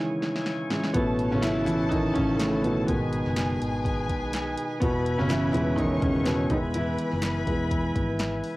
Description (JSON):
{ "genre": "piano-driven pop", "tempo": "124 BPM", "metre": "4/4", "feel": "swing 56% on 16ths", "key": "E major", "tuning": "A4 = 437 Hz", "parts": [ { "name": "dark upright piano", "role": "accompaniment", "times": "0.0-8.6 s", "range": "A2 to E4", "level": "-25 LUFS", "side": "equal", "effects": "cassette tape" }, { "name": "tonewheel organ", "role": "sustained chords", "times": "0.0-8.6 s", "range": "D#4 to A5", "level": "-35 LUFS", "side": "equal", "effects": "slow rotary speaker, cassette tape" }, { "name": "deep house drum kit", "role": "drums", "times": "0.2-8.6 s", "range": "hi-hat, kick drum, snare drum", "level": "-32 LUFS", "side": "equal", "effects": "cassette tape" }, { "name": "warm studio violin section", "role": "second line", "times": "0.9-8.6 s", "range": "G#4 to C#6", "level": "-36 LUFS", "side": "left 3 dB", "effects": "cassette tape" }, { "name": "vintage muted fingered electric bass", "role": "bass", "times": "0.9-8.4 s", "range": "E1 to B1", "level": "-32 LUFS", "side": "equal", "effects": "none" }, { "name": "group handclap", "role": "percussion", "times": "1.4-8.3 s", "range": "none", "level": "-44 LUFS", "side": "left 2 dB", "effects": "none" } ], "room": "small room ambience", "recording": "home recording on cassette", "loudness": "-23 LUFS", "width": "side -19 dB against mid", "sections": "0.0-8.6 A section", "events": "drum fill 0.0-1.0; upright piano solo 0.0-8.6", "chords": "0.0 C#m; 1.0 A; 2.9 G#m; 4.8 E" }